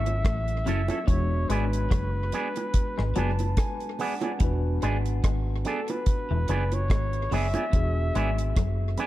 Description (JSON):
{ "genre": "lovers rock reggae", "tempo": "72 BPM", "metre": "4/4", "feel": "swing 56% on 16ths", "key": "unclear", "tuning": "A4 = 440 Hz", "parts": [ { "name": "breathy flugelhorn", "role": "melody", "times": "0.0-9.0 s", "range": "A4 to E5", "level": "-33 LUFS", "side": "left 1 dB", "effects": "tape echo" }, { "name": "tine electric piano", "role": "accompaniment", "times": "0.0-9.1 s", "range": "F#3 to B5", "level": "-35 LUFS", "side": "left 1 dB", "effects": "fast stereo tremolo, tape echo" }, { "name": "twangy electric guitar", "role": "riff", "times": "0.0-8.8 s", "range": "E3 to A3", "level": "-36 LUFS", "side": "left 7 dB", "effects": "ensemble chorus" }, { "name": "vintage muted fingered electric bass", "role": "bass", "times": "0.0-9.0 s", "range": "E1 to A1", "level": "-27 LUFS", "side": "equal", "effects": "none" }, { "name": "deep reggae drum kit", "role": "drums", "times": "0.1-9.1 s", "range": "hi-hat, kick drum, rim click", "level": "-26 LUFS", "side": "equal", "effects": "none" }, { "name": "bongos", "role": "percussion", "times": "0.1-9.1 s", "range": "none", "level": "-37 LUFS", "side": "right 5 dB", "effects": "none" }, { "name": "electric guitar with an envelope filter", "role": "stabs", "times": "0.7-9.1 s", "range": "B3 to A4", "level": "-33 LUFS", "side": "right 4 dB", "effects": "none" } ], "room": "small room ambience", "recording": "dark, warm production", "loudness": "-24 LUFS", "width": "side -15 dB against mid", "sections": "0.0-9.1 A section", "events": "tine electric piano fill 2.7-4.4, 8.6-9.1", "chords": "0.0 F#m7; 1.1 E7", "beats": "0.25 | 1.08 1.91 2.75 3.58 | 4.41 5.24 6.07 6.90 | 7.74 8.57" }